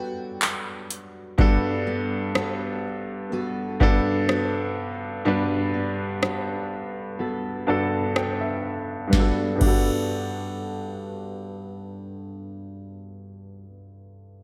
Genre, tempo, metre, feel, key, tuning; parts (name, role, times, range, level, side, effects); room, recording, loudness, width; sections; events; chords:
contemporary R&B; 62 BPM; 4/4; straight; G major; A4 = 440 Hz
clear grand piano; accompaniment; 0.0-14.4 s; G2 to A5; -29 LUFS; equal; low-pass filter
fingerpicked steel-string acoustic guitar; arpeggios; 0.0-13.7 s; G3 to A4; -33 LUFS; equal; subtle chorus, low-pass filter, diffuse ambient delay
soft round pluck; texture; 0.0-0.9 s; barely audible
booming analog drum machine; drums; 0.4-9.9 s; crash cymbal, handclaps, hi-hat, kick drum, rim click, snare drum; -26 LUFS; equal; overdrive
wet plate reverb, RT60 1.9 s, digital ambience; dreamy mix soaked in reverb; -25 LUFS; mono
0.0-1.4 A section; 1.4-9.1 B section; 9.1-13.0 C section
break 0.0-1.4; grand piano fill 7.2-9.1
0.0 Gmaj9